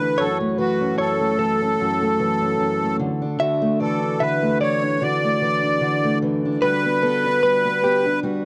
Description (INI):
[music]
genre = pop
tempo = 74 BPM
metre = 4/4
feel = swing 55% on 16ths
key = D major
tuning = A4 = 440 Hz
[part]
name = accordion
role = melody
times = 0.0-8.2 s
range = F#4 to D5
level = -24 LUFS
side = equal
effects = light tremolo tuning
[part]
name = fingerpicked steel-string acoustic guitar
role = accompaniment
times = 0.0-8.4 s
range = F#2 to F#4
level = -24 LUFS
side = equal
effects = cassette tape
[part]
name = direct-recorded clean electric guitar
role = arpeggios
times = 0.2-8.0 s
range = G4 to E5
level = -26 LUFS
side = equal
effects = cassette tape
[sound]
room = light reverb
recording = home recording on cassette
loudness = -20 LUFS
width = mono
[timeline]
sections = 0.0-8.4 A section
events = none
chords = 0.2 F#m7; 3.0 Dadd9; 6.6 Gmaj7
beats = | 0.18 0.99 1.79 2.60 | 3.40 4.21 5.01 5.82 | 6.62 7.43 8.23